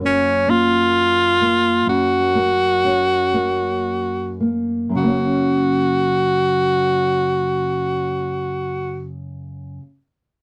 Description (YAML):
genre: six-eight pop ballad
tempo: 36-44 BPM (dotted quarters)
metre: 6/8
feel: straight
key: F# major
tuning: A4 = 441 Hz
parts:
  - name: nylon-string guitar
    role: accompaniment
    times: 0.0-9.9 s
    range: F#2 to C#4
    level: -24 LUFS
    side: equal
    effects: double-tracked
  - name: edgy tenor saxophone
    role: melody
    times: 0.1-9.1 s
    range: C#4 to F#4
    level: -20 LUFS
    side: equal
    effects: none
room: light reverb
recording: dry, close 1970s-style studio recording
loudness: -18 LUFS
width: mono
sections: 0.0-4.9 A section; 4.9-8.3 B section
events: slowing down 0.0-4.9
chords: 0.0 F#